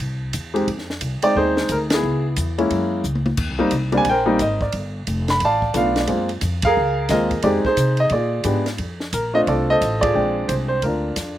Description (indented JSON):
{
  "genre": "jazz piano trio",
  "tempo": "177 BPM",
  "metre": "4/4",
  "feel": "swing 63% on 8ths",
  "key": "unclear",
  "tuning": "A4 = 439 Hz",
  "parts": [
    { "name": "upright bass", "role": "bass", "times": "0.0-11.4 s", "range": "F1 to C3", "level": "-24 LUFS", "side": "equal", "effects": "none" },
    { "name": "compact cocktail drum kit", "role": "drums", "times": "0.0-11.3 s", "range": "crash cymbal, hi-hat, kick drum, ride cymbal, snare drum, toms", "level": "-28 LUFS", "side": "equal", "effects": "none" },
    { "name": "warm grand piano", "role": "melody", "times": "0.5-11.4 s", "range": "G3 to B5", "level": "-18 LUFS", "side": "equal", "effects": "none" }
  ],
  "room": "little or no reverb",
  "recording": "recorded outdoors, with no room sound",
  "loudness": "-18 LUFS",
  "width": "side -13 dB against mid",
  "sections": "0.0-8.8 A section; 8.8-11.4 B section",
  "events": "band accent 1.9, 6.6, 10.0; drum fill 3.0-3.4",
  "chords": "0.0 C; 0.7 Fm9; 2.0 Dbm7; 2.7 Gb9; 3.4 Abmaj9; 4.7 G9; 6.1 Gbmaj9#11; 7.4 Fm9; 8.1 Bb7b9; 8.8 Bbmaj9; 10.1 Bb13",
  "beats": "0.00 0.34 | 0.68 1.01 1.35 1.69 | 2.03 2.37 2.71 3.04 | 3.38 3.72 4.06 4.40 | 4.74 5.08 5.41 5.75 | 6.09 6.43 6.77 7.11 | 7.44 7.78 8.12 8.46 | 8.79 9.13 9.47 9.81 | 10.15 10.48 10.82 11.16"
}